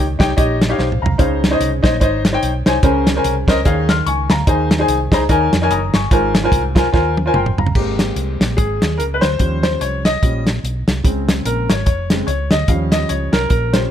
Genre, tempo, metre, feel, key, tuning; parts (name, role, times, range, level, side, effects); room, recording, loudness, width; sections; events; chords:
uptempo gospel; 146 BPM; 4/4; swing 59% on 8ths; Ab major; A4 = 441 Hz
clear upright piano; accompaniment; 0.0-13.9 s; Ab2 to F6; -18 LUFS; left 1 dB
hollow-body short-scale fingered electric bass; bass; 0.0-13.9 s; F1 to F2; -20 LUFS; equal
warm soul drum kit; drums; 0.2-13.8 s; crash cymbal, hi-hat, kick drum, snare drum, toms; -16 LUFS; equal
light reverb; -14 LUFS; side -10 dB against mid
0.0-7.8 A section; 7.8-13.9 B section
drum fill 0.8-1.2, 6.9-7.8; upright piano solo 7.8-13.9
0.0 Eb9; 1.2 Dbmaj9; 2.8 Bbm9/Db; 3.7 Eb9sus4; 4.5 Ab/Eb; 5.3 Eb7sus4; 6.1 Ab69; 7.8 Abmaj7; 9.4 Eb7; 11.0 Bbm7; 12.7 Eb7